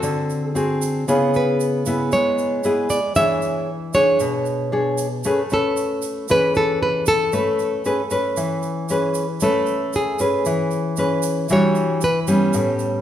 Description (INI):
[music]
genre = bossa nova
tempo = 115 BPM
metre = 4/4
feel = straight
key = A major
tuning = A4 = 440 Hz
[part]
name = nylon-string guitar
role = melody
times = 0.0-12.2 s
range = G#4 to E5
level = -21 LUFS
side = equal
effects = none
[part]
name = nylon-string guitar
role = accompaniment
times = 0.0-13.0 s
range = A2 to C#5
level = -19 LUFS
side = left 1 dB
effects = none
[part]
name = tube shaker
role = percussion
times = 0.0-13.0 s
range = none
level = -34 LUFS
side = right 7 dB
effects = none
[sound]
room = moderate recital hall reverb, RT60 1.6 s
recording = recorded in a church or concert hall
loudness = -18 LUFS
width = side -10 dB against mid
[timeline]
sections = 0.0-9.4 A section; 9.4-13.0 B section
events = nylon-string guitar solo 9.4-13.0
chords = 0.0 D7#11; 1.1 C#m7; 3.2 E6; 5.2 Amaj9; 11.5 Em9